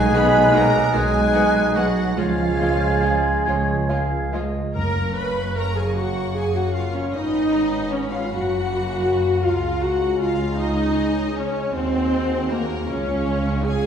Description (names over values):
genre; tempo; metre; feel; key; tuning
classical; 46-53 BPM (dotted quarters); 6/8; rubato; F# major; A4 = 440 Hz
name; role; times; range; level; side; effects
warm studio violin section; melody; 0.0-13.9 s; E#5 to C#6; -32 LUFS; left 3 dB; none
dark clarinet; second line; 0.0-4.8 s; C#5 to E#5; -26 LUFS; left 1 dB; none
mellow hollow silver concert flute; second line; 0.0-4.4 s; F#6 to G#6; -27 LUFS; left 2 dB; none
warm oboe; second line; 0.0-3.4 s; E#4 to B4; -30 LUFS; right 1 dB; none
mellow bassoon; accompaniment; 0.0-4.4 s; G#3; -28 LUFS; right 3 dB; none
clear trombone section; sustained chords; 0.0-4.4 s; B2 to F#3; -28 LUFS; right 2 dB; none
warm French horn section; sustained chords; 0.0-13.9 s; G#3 to F#4; -29 LUFS; left 2 dB; none
mellow trumpet; stabs; 0.0-4.4 s; G#4; -24 LUFS; right 6 dB; none
rich studio double bass section; bass; 0.0-13.9 s; F#1 to D#2; -26 LUFS; right 1 dB; none
warm studio cello section; bass; 0.0-13.9 s; C#2 to B3; -28 LUFS; right 1 dB; none
rich studio violin section; second line; 0.1-13.9 s; G#3 to B5; -32 LUFS; left 3 dB; none
rich studio viola section; accompaniment; 0.1-13.9 s; D#3 to B4; -24 LUFS; equal; none
timpani; percussion; 4.8-5.9 s; F#2; -28 LUFS; left 1 dB; none
room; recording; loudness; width
wet recital hall reverb, RT60 1.3 s; recorded in a church or concert hall; -18 LUFS; side -8 dB against mid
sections
0.0-4.8 A section; 4.8-13.9 B section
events
none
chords
0.0 G#m7/B; 2.2 C#; 4.8 F#; 7.1 C#5/G#; 8.3 F#; 9.4 C#5; 11.7 G#7/D#; 12.9 C#